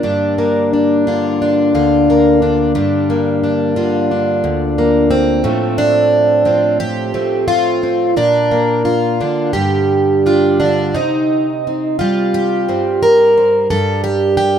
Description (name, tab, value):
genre	folk, solo fingerstyle acoustic guitar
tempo	88 BPM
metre	4/4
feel	rubato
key	unclear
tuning	A4 = 440 Hz
part	picked plugged-in twelve-string acoustic guitar	solo	0.0-14.6 s	D2 to Bb4	-12 LUFS	equal	none
room	moderate small room ambience, RT60 0.5 s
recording	minimal, uncompressed stereo recording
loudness	-12 LUFS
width	side -8 dB against mid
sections	0.0-11.0 A section; 11.0-14.6 B section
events	none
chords	0.0 Gm7; 5.4 F/A; 8.2 Bb; 9.5 G5; 11.0 Cm7; 13.7 N.C.